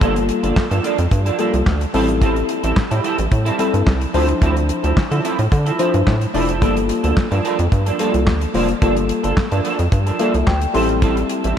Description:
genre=early-eighties boogie funk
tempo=109 BPM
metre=4/4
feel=straight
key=G dorian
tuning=A4 = 440 Hz
part: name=tine electric piano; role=accompaniment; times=0.0-11.6 s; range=F3 to C6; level=-21 LUFS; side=left 4 dB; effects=wide subtle chorus
part: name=semi-hollow electric guitar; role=riff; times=0.0-11.6 s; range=F3 to A4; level=-22 LUFS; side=right 5 dB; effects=analog chorus
part: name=rubbery square bass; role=bass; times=0.0-11.5 s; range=F1 to D3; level=-19 LUFS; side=equal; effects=none
part: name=damped 70s drum kit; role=drums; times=0.0-11.6 s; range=handclaps, hi-hat, kick drum, snare drum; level=-21 LUFS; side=equal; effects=none
room=moderate huge ambient reverb, RT60 6.3 s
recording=dreamy mix soaked in reverb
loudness=-15 LUFS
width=side -9 dB against mid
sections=0.0-11.6 A section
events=tine electric piano fill 9.9-11.0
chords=0.0 Gm9; 1.9 Am7; 4.1 Dm9; 6.6 Gm9; 10.7 Am7

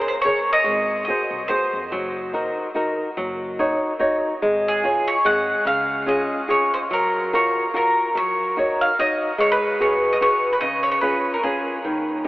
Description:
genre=italian folk, Italian serenade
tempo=145 BPM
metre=3/4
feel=straight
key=Db major, F# major from 6.9 s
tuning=A4 = 440 Hz
part: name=bowl-back mandolin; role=melody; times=0.0-1.8, 4.7-11.7 s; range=Ab4 to Gb5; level=-20 LUFS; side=equal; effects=analog delay
part: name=flamenco guitar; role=accompaniment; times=0.0-12.3 s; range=Db3 to Db5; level=-22 LUFS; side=equal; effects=none
part: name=upright bass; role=bass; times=0.7-6.2, 11.9-12.3 s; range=Gb1 to F2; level=-39 LUFS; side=equal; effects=none
room=wet huge ambient reverb, RT60 4.9 s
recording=dreamy mix soaked in reverb, telephone sound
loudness=-18 LUFS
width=side -18 dB against mid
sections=0.0-6.9 A section; 6.9-12.3 B section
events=none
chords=0.0 Bbm7; 0.7 Ab7; 1.9 Gb6; 3.2 Ebm7/Gb; 4.4 Db/Ab; 5.2 Gbsus2/Ab; 5.7 Db; 6.9 F#maj7; 8.2 D#m7/F#; 9.4 G#m7; 10.6 C#

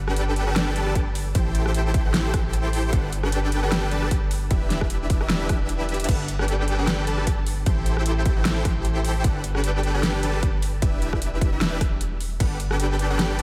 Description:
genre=future bass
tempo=152 BPM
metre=4/4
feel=swing 55% on 16ths, half-time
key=G major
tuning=A4 = 438 Hz
part: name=long sustained 808-style bass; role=bass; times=0.0-13.4 s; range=E1 to A1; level=-28 LUFS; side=equal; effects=sidechain pumping
part: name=dense compressed supersaw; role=riff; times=0.1-13.4 s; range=D4 to A5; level=-29 LUFS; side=equal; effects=sidechain pumping, analog delay
part: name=big-room dance drum kit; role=drums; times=0.1-13.4 s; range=crash cymbal, hi-hat, rim click, snare drum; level=-31 LUFS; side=equal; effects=overdrive
part: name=electronic kick drum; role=drums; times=1.0-12.5 s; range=none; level=-26 LUFS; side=equal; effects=overdrive
room=moderate lush hall reverb, RT60 2.0 s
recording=dreamy mix soaked in reverb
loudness=-23 LUFS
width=mono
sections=0.0-13.4 A section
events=drum fill 5.9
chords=0.0 Gadd9; 1.3 Am7; 2.9 Gmaj9; 4.5 Em7; 6.1 Gmaj9; 7.7 Am7; 9.2 Gmaj9; 10.8 Em7; 12.4 Gmaj9

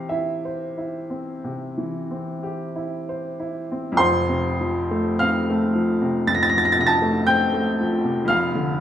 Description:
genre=classical, romantic nocturne for solo piano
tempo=45-62 BPM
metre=4/4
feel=rubato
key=F major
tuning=A4 = 440 Hz
part: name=clear upright piano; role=solo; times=0.0-8.8 s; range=F1 to Bb6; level=-20 LUFS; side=equal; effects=none
room=wet recital hall reverb, RT60 1.8 s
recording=small room ambience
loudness=-20 LUFS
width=side -10 dB against mid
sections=0.0-4.0 A section; 4.0-8.8 B section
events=none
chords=0.0 C; 4.0 F; 8.3 Dm/F

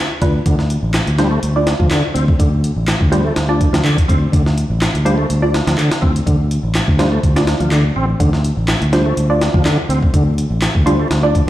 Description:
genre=breakbeat, breaks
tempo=124 BPM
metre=4/4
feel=swing 54% on 16ths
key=D minor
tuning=A4 = 441 Hz
part: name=filtered dub chord stab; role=stabs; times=0.0-11.5 s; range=D4 to D5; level=-20 LUFS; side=right 1 dB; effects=wide subtle chorus, cassette tape, ping-pong delay
part: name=fingered electric bass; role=bass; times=0.2-11.5 s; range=A1 to D2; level=-16 LUFS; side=equal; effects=none
part: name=breakbeat sampler-style drum kit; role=drums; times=0.2-11.5 s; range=hi-hat, kick drum, snare drum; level=-17 LUFS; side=equal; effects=none
part: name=bright tonewheel organ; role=riff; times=0.5-11.1 s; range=D3 to C4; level=-20 LUFS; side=equal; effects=chorus vibrato, slow rotary speaker, tube saturation, ping-pong delay
part: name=electronic handclaps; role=drums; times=0.9-10.7 s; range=none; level=-25 LUFS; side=equal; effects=overdrive
room=light reverb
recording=played on a big sound system in a bare room, stone room reverb, vinyl crackle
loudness=-13 LUFS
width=side -14 dB against mid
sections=0.0-11.5 A section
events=filter sweep on synth stab 0.0-11.5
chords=0.0 Dm

